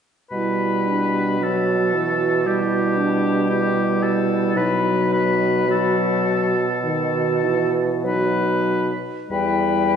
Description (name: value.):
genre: classical, slow romantic movement for wind quintet.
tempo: 46-58 BPM.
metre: 4/4.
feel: rubato.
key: E minor.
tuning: A4 = 440 Hz.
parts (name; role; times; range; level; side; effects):
clear oboe; second line; 0.3-10.0 s; G4 to B4; -24 LUFS; left 3 dB; none.
clear clarinet; accompaniment; 0.3-10.0 s; D4 to F#4; -25 LUFS; right 5 dB; none.
warm French horn; accompaniment; 0.3-10.0 s; D#3 to G3; -23 LUFS; left 3 dB; none.
warm bassoon; bass; 0.3-10.0 s; E2 to B2; -23 LUFS; right 3 dB; none.
concert flute; melody; 9.3-10.0 s; G5; -21 LUFS; left 14 dB; none.
room: wet scoring stage reverb, RT60 1.9 s.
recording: heard from further back in the room, nothing above 10.6 kHz.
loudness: -18 LUFS.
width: side -7 dB against mid.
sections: 0.3-9.3 A section.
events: none.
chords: 0.3 Em/B; 4.6 B7; 9.3 Em.